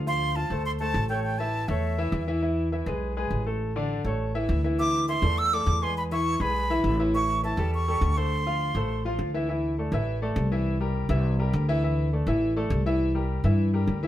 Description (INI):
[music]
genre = latin, salsa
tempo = 204 BPM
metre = 4/4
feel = straight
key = D minor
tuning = A4 = 439 Hz
[part]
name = clear grand piano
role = accompaniment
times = 0.0-14.1 s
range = D3 to F5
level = -28 LUFS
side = left 1 dB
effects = none
[part]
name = upright bass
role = bass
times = 0.0-14.1 s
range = A1 to G2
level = -26 LUFS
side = equal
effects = none
[part]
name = breathy bright concert flute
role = melody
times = 0.1-2.3, 4.8-9.2 s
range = E5 to E6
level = -28 LUFS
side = right 1 dB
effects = none
[sound]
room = moderate studio reverb, RT60 0.8 s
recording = band playing live in one room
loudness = -24 LUFS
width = side -13 dB against mid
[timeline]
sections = 0.1-9.5 A section; 9.5-14.1 B section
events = none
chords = 0.1 Dm7; 1.2 A; 2.4 E; 3.6 Asus4; 4.2 A; 4.8 Dsus2; 6.0 E; 7.1 A7; 8.3 Dm7; 9.5 Dsus2; 10.7 C7; 11.8 Dsus2; 13.0 C7